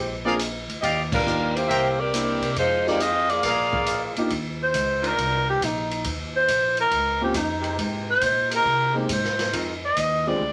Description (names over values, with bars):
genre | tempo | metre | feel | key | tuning
jazz, big band swing | 138 BPM | 4/4 | swing 68% on 8ths | Eb major | A4 = 442 Hz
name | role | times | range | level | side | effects
warm saxophone section | melody | 0.0-4.2 s | G3 to Eb5 | -25 LUFS | equal | none
upright bass | bass | 0.0-10.5 s | Bb1 to C3 | -34 LUFS | equal | none
warm grand piano | accompaniment | 0.2-4.3, 7.2-10.4 s | Ab3 to Ab4 | -29 LUFS | equal | none
clear trumpet section | stabs | 0.2-4.1 s | G4 to G5 | -27 LUFS | equal | none
swinging big-band drum kit | drums | 0.4-10.1 s | crash cymbal, hi-hat, kick drum, ride cymbal, snare drum | -33 LUFS | equal | none
breathy alto saxophone | melody | 4.6-10.5 s | Eb4 to Eb5 | -24 LUFS | equal | none
clear saxophone section | sustained chords | 5.0-9.7 s | C3 to G4 | -34 LUFS | equal | none
room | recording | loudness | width
wet small room reverb, RT60 0.5 s | none | -23 LUFS | mono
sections
0.0-4.3 A section; 4.3-10.5 B section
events
band accent 1.0; alto saxophone solo 4.3-10.5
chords
0.0 Bb7; 0.8 Ebmaj9; 1.7 C7; 2.6 Fm7; 3.4 Bb7; 4.3 Ebmaj9; 6.0 Eb13; 7.8 Abmaj9; 9.5 Fm7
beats
0.38 | 0.82 1.25 1.69 2.12 | 2.56 3.00 3.43 3.87 | 4.30 4.74 5.17 5.61 | 6.05 6.48 6.92 7.35 | 7.79 8.22 8.66 9.10 | 9.53 9.97 10.40